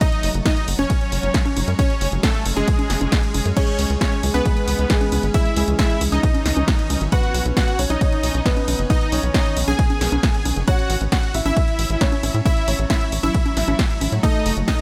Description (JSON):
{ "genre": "uplifting trance", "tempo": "135 BPM", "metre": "4/4", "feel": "straight", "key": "C# minor", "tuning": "A4 = 440 Hz", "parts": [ { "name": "supersaw stab", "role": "melody", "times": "0.0-14.8 s", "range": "G#3 to G#5", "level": "-27 LUFS", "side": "equal", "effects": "sidechain pumping, digital delay" }, { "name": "shimmering ambient pad", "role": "sustained chords", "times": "0.0-14.8 s", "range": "D#3 to C#4", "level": "-34 LUFS", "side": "equal", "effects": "none" }, { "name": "electronic kick drum", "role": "drums", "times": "0.0-14.8 s", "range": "none", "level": "-22 LUFS", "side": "equal", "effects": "none" }, { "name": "punchy analog drum machine", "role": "drums", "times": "0.0-14.8 s", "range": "congas, crash cymbal, hi-hat, ride cymbal, snare drum", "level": "-28 LUFS", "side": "equal", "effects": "sidechain pumping on hats, sidechain pumping on cymbals, sidechain pumping on perc" }, { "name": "tight sequencer bass", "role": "bass", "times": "0.2-14.6 s", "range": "F#1 to A2", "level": "-24 LUFS", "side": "equal", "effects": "sidechain pumping" }, { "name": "dark baby grand piano", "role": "second line", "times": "3.6-14.8 s", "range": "G#3 to E5", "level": "-29 LUFS", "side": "equal", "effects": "delay" } ], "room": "little or no reverb", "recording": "none", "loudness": "-19 LUFS", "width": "mono", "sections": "0.0-14.8 A section", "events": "none", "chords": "0.0 F#sus2; 3.6 C#m; 7.1 Badd9; 10.7 A6; 14.2 F#m" }